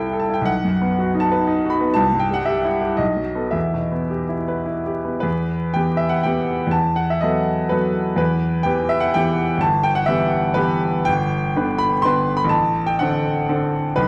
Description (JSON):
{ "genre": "classical, romantic character piece for solo piano", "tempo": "103-130 BPM", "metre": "3/4", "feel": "rubato", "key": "E minor", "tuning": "A4 = 444 Hz", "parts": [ { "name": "bright baby grand piano", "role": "solo", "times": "0.0-14.1 s", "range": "G1 to C6", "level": "-20 LUFS", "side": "equal", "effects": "none" } ], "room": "moderate recital hall reverb, RT60 1.2 s", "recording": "dark, warm production, vinyl crackle", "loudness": "-20 LUFS", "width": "mono", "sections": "0.0-5.2 A section; 5.2-14.1 B section", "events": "none", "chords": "0.5 B; 2.0 C; 3.0 B7; 3.5 Em; 6.7 B7/E; 8.2 Em; 9.6 Em/G; 11.1 G; 12.5 D7/A", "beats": "| 0.48 0.98 1.48 | 1.99 2.49 3.00 | 3.54 4.11 4.68 | 5.24 5.75 6.24 | 6.73 7.23 7.71 | 8.19 8.66 9.15 | 9.62 10.09 10.56 | 11.08 11.57 12.04 | 12.52 13.01 13.48 | 13.97" }